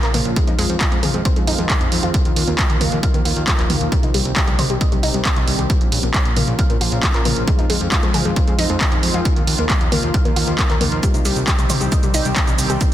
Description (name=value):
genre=uplifting trance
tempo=135 BPM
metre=4/4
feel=straight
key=unclear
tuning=A4 = 439 Hz
part: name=lush unison pad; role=sustained chords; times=0.0-12.9 s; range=Db3 to G4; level=-24 LUFS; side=equal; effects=chorus, sidechain pumping
part: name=analog pluck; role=arpeggios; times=0.0-12.7 s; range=G3 to F5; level=-26 LUFS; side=left 2 dB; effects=chorus, sidechain pumping, digital delay
part: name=fat analog bass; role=bass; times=0.0-12.9 s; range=Eb1 to F2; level=-23 LUFS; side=equal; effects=tube saturation, sidechain pumping
part: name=punchy analog drum machine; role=drums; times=0.0-12.9 s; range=handclaps, hi-hat, shaker, toms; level=-21 LUFS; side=right 1 dB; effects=none
part: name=electronic kick drum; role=drums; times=0.4-12.9 s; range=none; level=-18 LUFS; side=equal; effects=none
room=digital ambience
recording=dense, heavily limited modern master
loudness=-15 LUFS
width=side -12 dB against mid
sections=0.0-12.9 A section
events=filter sweep on analog synth pad 0.0-12.9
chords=0.4 Fm7; 2.1 Ebsus2; 3.9 Cm; 5.7 Bbm; 7.5 Fm7; 9.3 Ebsus2; 11.0 Cm